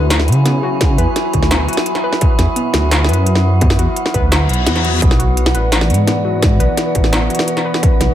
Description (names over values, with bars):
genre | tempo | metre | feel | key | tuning
half-time drum and bass | 171 BPM | 4/4 | half-time | unclear | A4 = 440 Hz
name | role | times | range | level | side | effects
dark analog pad | sustained chords | 0.0-8.1 s | B3 to B5 | -21 LUFS | right 2 dB | chorus, vintage 12-bit sampler grit, sidechain pumping
warbly dusty pluck | arpeggios | 0.0-7.8 s | B3 to B4 | -24 LUFS | left 3 dB | chorus, tape echo
dark detuned saw bass | bass | 0.0-8.1 s | A1 to C#3 | -15 LUFS | equal | none
metallic inharmonic drone | texture | 0.0-8.1 s | E3 to F#4 | -24 LUFS | left 3 dB | chorus, built-in reverb
industrial drum kit | drums | 0.1-8.1 s | hi-hat, snare drum | -18 LUFS | equal | none
electronic kick drum | drums | 0.8-7.9 s | none | -15 LUFS | equal | distortion
reverse cymbal | sound effects | 4.4-5.0 s | none | -21 LUFS | left 7 dB | none
room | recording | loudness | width
light reverb, digital ambience | none | -12 LUFS | side -11 dB against mid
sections
0.0-8.1 A section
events
reverse cymbal 4.4-5.0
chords
0.0 E; 5.0 Bm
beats
0.11 0.46 | 0.81 1.16 1.51 1.86 | 2.21 2.56 2.91 3.27 | 3.62 3.97 4.32 4.67 | 5.02 5.37 5.72 6.07 | 6.42 6.77 7.12 7.48 | 7.83